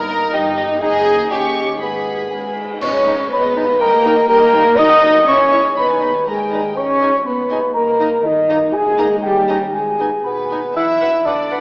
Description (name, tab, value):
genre	cinematic, playful, whimsical film cue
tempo	121 BPM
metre	2/4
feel	straight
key	G# minor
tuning	A4 = 440 Hz
part	clear symphonic violin section	second line	0.0-11.6 s	D#4 to G5	-27 LUFS	equal	none
part	mellow hollow silver concert flute	second line	0.0-11.6 s	D#5 to D#6	-20 LUFS	equal	none
part	dark chamber viola section	accompaniment	0.0-11.6 s	F#3 to F#5	-24 LUFS	equal	none
part	mellow bassoon	accompaniment	0.0-11.6 s	G3 to G4	-22 LUFS	equal	none
part	mellow French horn section	sustained chords	0.0-11.6 s	A#3 to D#5	-16 LUFS	equal	none
part	concert harp	arpeggios	0.0-11.6 s	F#2 to D#5	-30 LUFS	equal	none
part	dark chamber double bass section	bass	0.0-11.6 s	F#1 to E2	-36 LUFS	equal	none
part	warm chamber cello section	bass	0.0-11.6 s	D#2 to D#4	-24 LUFS	equal	none
part	warm studio violin section	melody	0.1-11.6 s	B4 to C#6	-27 LUFS	equal	none
part	cymbal swell, clash cymbals and concert bass drum	percussion	0.8-3.8 s	none	-32 LUFS	equal	none
part	celesta	melody	2.3-11.6 s	D#5 to E6	-22 LUFS	equal	none
part	clear clarinet	second line	3.1-11.6 s	D#4 to B4	-28 LUFS	equal	none
room	wet concert hall reverb, RT60 1.9 s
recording	worn, warbling old tape, cassette tape, warbly pitch drift, AM radio sound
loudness	-13 LUFS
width	side -32 dB against mid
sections	0.0-2.8 A section; 2.8-10.8 B section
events	band accent 2.8-3.3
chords	0.0 D#/G; 0.8 D#m/F#; 1.3 D#7; 1.8 G#m; 3.8 D#/G; 4.8 D#m/F#; 5.3 C#m/E; 5.8 G#m/D#; 6.3 D#; 6.8 G#m; 7.8 D#/G; 8.7 D#m/F#; 9.2 D#7; 9.7 G#m; 10.8 Bm